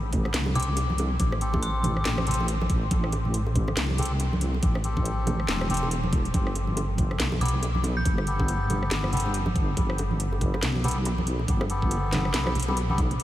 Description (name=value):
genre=deep dubstep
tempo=140 BPM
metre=4/4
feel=swing 59% on 16ths, half-time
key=unclear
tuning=A4 = 441 Hz
part: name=deep soft wobble bass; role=bass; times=0.0-13.2 s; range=E1 to C2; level=-27 LUFS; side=equal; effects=chorus
part: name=electronic kick drum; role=drums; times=0.1-13.1 s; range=none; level=-26 LUFS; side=equal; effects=studio reverb
part: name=garage drum kit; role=drums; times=0.1-13.2 s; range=hi-hat, rim click, snare drum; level=-32 LUFS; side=equal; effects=studio reverb
part: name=congas and bongos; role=percussion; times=0.1-13.2 s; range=none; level=-31 LUFS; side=right 1 dB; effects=dub echo
part: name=dark detuned synth bell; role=melody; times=0.6-2.2, 7.4-8.6 s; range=C6 to G6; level=-37 LUFS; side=left 2 dB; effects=chorus, phaser, dub echo
part: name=melodica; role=stabs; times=0.6-13.0 s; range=B3 to A4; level=-32 LUFS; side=left 2 dB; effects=dub echo
room=moderate huge ambient reverb, RT60 8.0 s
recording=dreamy mix soaked in reverb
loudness=-23 LUFS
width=side -14 dB against mid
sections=0.0-13.2 A section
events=drop 0.0-13.2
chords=0.0 Am7; 6.3 Gadd9